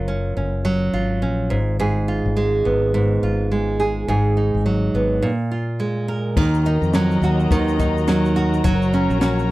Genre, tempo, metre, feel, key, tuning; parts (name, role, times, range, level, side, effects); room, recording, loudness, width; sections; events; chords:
acoustic pop; 105 BPM; 4/4; swing 60% on 16ths; Eb minor; A4 = 439 Hz
nylon-string guitar; accompaniment; 0.0-9.5 s; Ab2 to Bb4; -19 LUFS; right 2 dB
fretless electric bass; bass; 0.0-9.5 s; Gb1 to F2; -22 LUFS; left 1 dB
muted studio string section; sustained chords; 6.3-9.5 s; Gb4 to Bb5; -27 LUFS; left 7 dB
compact cocktail drum kit; drums; 6.4-9.5 s; crash cymbal, kick drum, shaker, snare drum; -22 LUFS; left 1 dB
little or no reverb; dry, close 1970s-style studio recording; -17 LUFS; side -17 dB against mid
0.0-6.4 A section; 6.4-9.5 B section
break 5.2-6.4
0.0 Gbmaj7; 1.5 Fdim/Ab; 4.1 Abm7; 5.2 Bb5; 6.4 Ebm; 8.6 Gb